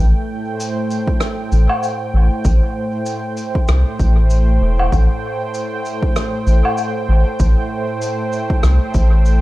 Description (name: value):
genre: ambient dub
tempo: 97 BPM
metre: 4/4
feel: swing 56% on 16ths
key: A minor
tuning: A4 = 439 Hz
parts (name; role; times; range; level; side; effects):
- warm analog pad; sustained chords; 0.0-9.4 s; A2 to G5; -22 LUFS; right 1 dB; chorus, tremolo
- round analog bass; bass; 0.0-9.4 s; E1 to C2; -12 LUFS; equal; none
- shaker, rim click and woodblock; drums; 0.6-9.4 s; none; -25 LUFS; left 1 dB; dub echo
- electronic kick drum; drums; 1.1-9.1 s; none; -18 LUFS; equal; none
room: small room ambience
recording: none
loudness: -14 LUFS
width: side -17 dB against mid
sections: 0.0-9.4 A section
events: none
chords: 0.0 Am7